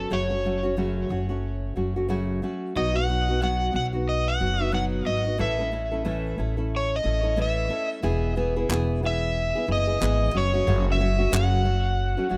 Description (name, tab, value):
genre	acoustic pop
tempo	91 BPM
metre	4/4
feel	swing 60% on 16ths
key	E major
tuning	A4 = 440 Hz
part	overdriven slide guitar	melody	0.0-12.4 s	A4 to F#5	-30 LUFS	equal	plate reverb, delay
part	nylon-string guitar	accompaniment	0.0-12.4 s	F#2 to A4	-30 LUFS	equal	plate reverb
part	upright bass	bass	0.0-12.4 s	E1 to B1	-29 LUFS	equal	none
part	group handclap	percussion	8.7-11.5 s	none	-31 LUFS	equal	none
room	light reverb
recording	none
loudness	-25 LUFS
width	mono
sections	0.0-8.0 A section; 8.0-12.4 B section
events	none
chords	0.0 F#m; 2.8 B; 5.4 A; 8.0 E; 10.3 F#m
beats	| 0.12 0.78 1.44 2.10 | 2.77 3.43 4.09 4.75 | 5.41 6.07 6.73 7.39 | 8.05 8.71 9.36 10.02 | 10.68 11.33 11.98